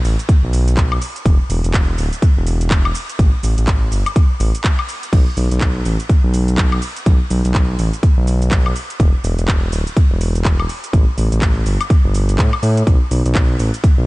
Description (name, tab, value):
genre	deep house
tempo	124 BPM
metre	4/4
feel	swing 60% on 16ths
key	unclear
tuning	A4 = 440 Hz
part	smooth gliding synth bass	bass	0.0-14.1 s	D1 to A2	-17 LUFS	equal	tube saturation, sidechain pumping
part	house drum kit	drums	0.0-14.0 s	crash cymbal, handclaps, hi-hat, shaker, woodblock	-24 LUFS	equal	none
part	electronic kick drum	drums	0.3-14.0 s	none	-13 LUFS	equal	none
room	little or no reverb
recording	nothing above 10.8 kHz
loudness	-13 LUFS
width	side -22 dB against mid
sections	0.0-14.1 A section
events	none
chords	none